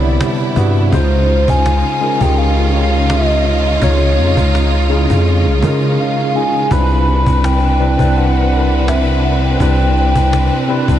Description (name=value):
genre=contemporary R&B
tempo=83 BPM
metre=4/4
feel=swing 54% on 16ths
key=unclear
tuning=A4 = 440 Hz
part: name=tine electric piano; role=accompaniment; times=0.0-11.0 s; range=C3 to A5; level=-17 LUFS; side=equal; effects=overdrive, medium stereo tremolo
part: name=clear studio string section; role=sustained chords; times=0.0-11.0 s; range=C3 to B4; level=-20 LUFS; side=equal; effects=none
part: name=long sustained 808-style bass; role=bass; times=0.0-11.0 s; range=C2 to Db3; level=-14 LUFS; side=equal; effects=none
part: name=cajon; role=drums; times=0.0-11.0 s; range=none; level=-23 LUFS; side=equal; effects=vintage 12-bit sampler grit
part: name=downlifter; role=sound effects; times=0.0-0.9 s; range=none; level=barely audible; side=none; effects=none
part: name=hollow clarinet-like synth lead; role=melody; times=0.9-11.0 s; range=C5 to B5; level=-19 LUFS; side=equal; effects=chorus, diffuse ambient delay
room=moderate lush hall reverb, RT60 3.2 s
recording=dreamy mix soaked in reverb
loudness=-11 LUFS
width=side -11 dB against mid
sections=0.0-11.0 A section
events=silent gap 6.0-6.7; tine electric piano fill 10.3-11.0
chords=0.0 Cmaj9; 0.9 Dbmaj9; 6.7 Cmaj9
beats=0.20 | 0.93 1.65 2.37 3.09 | 3.82 4.54 5.26 5.99 | 6.71 7.43 8.15 8.88 | 9.60 10.32